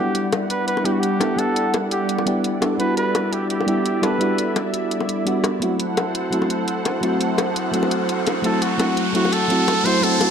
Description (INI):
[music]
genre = liquid drum and bass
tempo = 170 BPM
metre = 4/4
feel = straight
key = E minor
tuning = A4 = 440 Hz
[part]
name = warm flugelhorn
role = melody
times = 0.0-4.6, 8.4-10.3 s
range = F#4 to C5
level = -24 LUFS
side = right 2 dB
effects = tape echo
[part]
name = mellow FM electric piano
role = accompaniment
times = 0.0-10.3 s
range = F#3 to F#5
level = -21 LUFS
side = left 1 dB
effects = chorus, cassette tape, low-pass filter, tape echo
[part]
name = lush unison pad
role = sustained chords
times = 0.0-10.3 s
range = G3 to F#5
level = -26 LUFS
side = right 2 dB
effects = chorus, phaser
[part]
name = electronic hi-hat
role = drums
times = 0.1-10.3 s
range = none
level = -29 LUFS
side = right 1 dB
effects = none
[part]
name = bongos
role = percussion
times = 0.3-10.3 s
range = none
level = -25 LUFS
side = left 3 dB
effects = none
[part]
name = riser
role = sound effects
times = 6.8-10.3 s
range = none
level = -26 LUFS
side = right 1 dB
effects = none
[sound]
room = moderate lush hall reverb, RT60 1.9 s, small room ambience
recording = dark, warm production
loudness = -18 LUFS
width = side -7 dB against mid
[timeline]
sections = 0.0-10.3 A section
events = build-up 0.0-10.3; riser 6.8-10.3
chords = 0.0 Em9; 5.6 F#m7b5